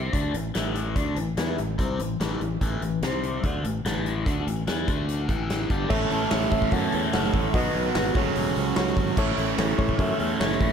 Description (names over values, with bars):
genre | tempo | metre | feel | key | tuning
classic rock | 146 BPM | 4/4 | straight | A major | A4 = 437 Hz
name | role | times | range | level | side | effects
biting overdriven guitar | riff | 0.0-10.7 s | G2 to A4 | -28 LUFS | left 4 dB | phaser
sustaining fretless electric bass | bass | 0.0-10.7 s | E1 to F#2 | -30 LUFS | equal | none
huge arena drum kit | drums | 0.1-10.7 s | crash cymbal, hi-hat, kick drum, snare drum | -28 LUFS | equal | none
reed electric piano | accompaniment | 5.9-10.7 s | E4 to F#5 | -30 LUFS | left 4 dB | none
cranked stack guitar | riff | 5.9-10.7 s | F#2 to B3 | -27 LUFS | right 15 dB | overdrive
room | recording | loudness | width
light reverb, small room ambience | none | -23 LUFS | side -7 dB against mid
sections
0.0-5.9 A section; 5.9-10.7 B section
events
none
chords
0.1 A5; 3.0 C5; 3.4 A5; 4.9 D5; 5.3 A5; 5.9 A; 7.5 B; 8.2 F#m; 9.2 A